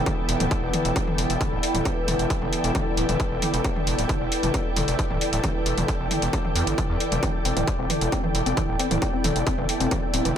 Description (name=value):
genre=driving peak-time techno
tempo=134 BPM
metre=4/4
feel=straight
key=E minor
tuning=A4 = 439 Hz
part: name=gritty driven synth bass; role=bass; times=0.0-10.3 s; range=D1 to E2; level=-27 LUFS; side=equal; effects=sidechain pumping
part: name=analog drone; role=drone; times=0.0-10.4 s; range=E3 to B3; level=-31 LUFS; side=left 1 dB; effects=chorus, sidechain pumping
part: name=ethereal airy pad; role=texture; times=0.0-10.4 s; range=E4 to G5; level=-28 LUFS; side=equal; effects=ensemble chorus, built-in reverb, sidechain pumping
part: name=electronic kick drum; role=drums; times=0.1-10.0 s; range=none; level=-26 LUFS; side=equal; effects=distortion
part: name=techno drum kit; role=drums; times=0.1-10.3 s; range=hi-hat, toms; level=-29 LUFS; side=left 1 dB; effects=none
part: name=woody wave-folded pluck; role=riff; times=7.2-10.3 s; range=E3 to C4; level=-29 LUFS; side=left 2 dB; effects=chorus, sidechain pumping, ping-pong delay
room=light reverb, digital ambience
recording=none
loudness=-21 LUFS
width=side -9 dB against mid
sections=0.0-10.4 A section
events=none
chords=0.0 Em